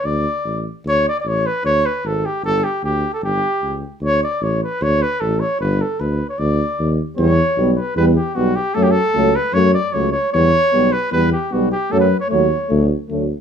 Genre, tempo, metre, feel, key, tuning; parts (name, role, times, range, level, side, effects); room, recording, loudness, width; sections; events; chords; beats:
balkan folk, Balkan brass band; 152 BPM; 2/4; straight; D major; A4 = 442 Hz
mellow cornet; melody; 0.0-12.9 s; F#4 to D5; -19 LUFS; equal
mellow tuba; bass; 0.0-13.3 s; G1 to F#2; -19 LUFS; equal
dark French horn; accompaniment; 7.2-13.2 s; A3 to B3; -22 LUFS; left 4 dB
warm euphonium; accompaniment; 7.2-13.3 s; F#3 to G3; -21 LUFS; right 5 dB
moderate studio reverb, RT60 0.6 s; band playing live in one room; -15 LUFS; side -8 dB against mid
0.8-7.2 A section; 7.2-13.4 B section
0.1 D5; 2.4 G5; 4.0 D5; 5.6 G5; 6.4 N.C.; 7.2 Em; 8.8 F#m; 10.3 Em; 11.9 F#m; 12.7 D
| 0.06 0.45 | 0.85 1.24 | 1.64 2.03 | 2.43 2.82 | 3.22 3.61 | 4.01 4.41 | 4.80 5.20 | 5.59 5.99 | 6.38 6.78 | 7.18 7.57 | 7.97 8.36 | 8.76 9.15 | 9.55 9.94 | 10.34 10.73 | 11.12 11.52 | 11.91 12.31 | 12.70 13.10